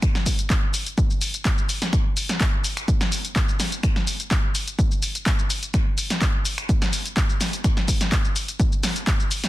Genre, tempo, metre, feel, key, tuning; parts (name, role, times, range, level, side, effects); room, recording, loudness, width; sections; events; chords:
house; 126 BPM; 4/4; straight
electronic kick drum; drums; 0.0-9.2 s; -21 LUFS; equal
punchy analog drum machine; drums; 0.0-9.5 s; finger snaps, handclaps, hi-hat, shaker, snare drum; -25 LUFS; left 1 dB; soft clipping on snare
little or no reverb; dense, heavily limited modern master; -20 LUFS; side -16 dB against mid
0.0-9.5 A section